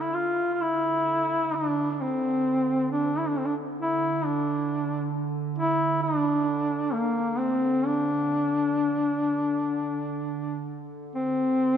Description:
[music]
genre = caucasian folk, Caucasian lament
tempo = 60-69 BPM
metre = 3/4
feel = rubato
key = D minor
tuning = A4 = 439 Hz
[part]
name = mellow duduk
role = melody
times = 0.0-11.8 s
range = Bb3 to F4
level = -24 LUFS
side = left 1 dB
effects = none
[part]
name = warbly tape-like pad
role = drone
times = 0.0-11.8 s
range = D3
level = -34 LUFS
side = right 4 dB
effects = chorus, built-in reverb
[sound]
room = wet church reverb, RT60 2.7 s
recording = none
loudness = -24 LUFS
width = side -8 dB against mid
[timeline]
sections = 0.0-11.2 A section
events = none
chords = none

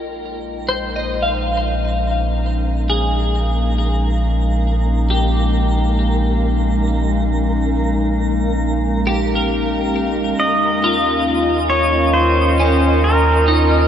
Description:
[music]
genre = ambient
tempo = 68 BPM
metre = 3/4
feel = straight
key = Bb dorian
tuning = A4 = 435 Hz
[part]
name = warbly tape-like pad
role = sustained chords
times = 0.0-13.9 s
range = Ab3 to G5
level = -20 LUFS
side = equal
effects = chorus, built-in reverb
[part]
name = warm sub bass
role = bass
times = 0.0-13.9 s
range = Bb1 to Eb2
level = -19 LUFS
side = equal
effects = none
[part]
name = twinkling granular texture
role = texture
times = 0.5-13.9 s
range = Bb4 to Eb6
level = -29 LUFS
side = equal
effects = built-in reverb
[part]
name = twelve-string electric guitar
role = arpeggios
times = 0.7-13.9 s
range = Db4 to F5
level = -22 LUFS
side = left 1 dB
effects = analog chorus, ping-pong delay
[part]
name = pedal steel guitar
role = melody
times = 10.4-13.9 s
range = Bb4 to Eb5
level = -17 LUFS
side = equal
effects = ping-pong delay
[sound]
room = wet huge ambient reverb, RT60 7.5 s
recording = in a vast, echoing space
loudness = -15 LUFS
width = side -9 dB against mid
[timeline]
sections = 0.0-13.9 A section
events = fade-in on ambient pad 0.0-13.9; fade-in on synth texture 0.0-13.9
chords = 0.0 Bbm7; 10.4 Eb7

